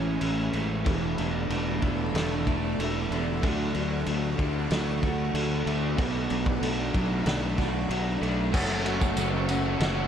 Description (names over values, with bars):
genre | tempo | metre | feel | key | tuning
rock, shoegaze and dream pop | 94 BPM | 4/4 | straight | unclear | A4 = 439 Hz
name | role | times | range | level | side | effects
phased string machine | sustained chords | 0.0-10.1 s | A4 to C#6 | -39 LUFS | equal | ensemble chorus, phaser
electric guitar through a small old amp | arpeggios | 0.0-10.1 s | E3 to A4 | -37 LUFS | equal | wide subtle chorus, slapback echo
crunchy overdriven guitar | riff | 0.0-10.1 s | E2 to F#4 | -32 LUFS | right 9 dB | reverse reverb
overdriven electric guitar | riff | 0.0-10.1 s | F#2 to F#4 | -34 LUFS | equal | none
overdriven semi-hollow guitar | riff | 0.0-10.1 s | F#2 to A4 | -33 LUFS | left 11 dB | lush chorus
fuzz fingered electric bass | bass | 0.0-10.1 s | E1 to D2 | -31 LUFS | equal | overdrive
loose indie drum kit | drums | 0.2-10.0 s | crash cymbal, kick drum, ride cymbal, snare drum | -30 LUFS | equal | none
tambourine | percussion | 8.7-9.6 s | none | -44 LUFS | right 10 dB | none
room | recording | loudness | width
small room ambience | dark, warm production | -25 LUFS | side -8 dB against mid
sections
0.0-8.5 A section; 8.5-10.1 B section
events
none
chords
0.0 Amaj7; 0.9 E7sus4; 3.4 Dmaj7; 6.0 Bm7; 8.5 F#m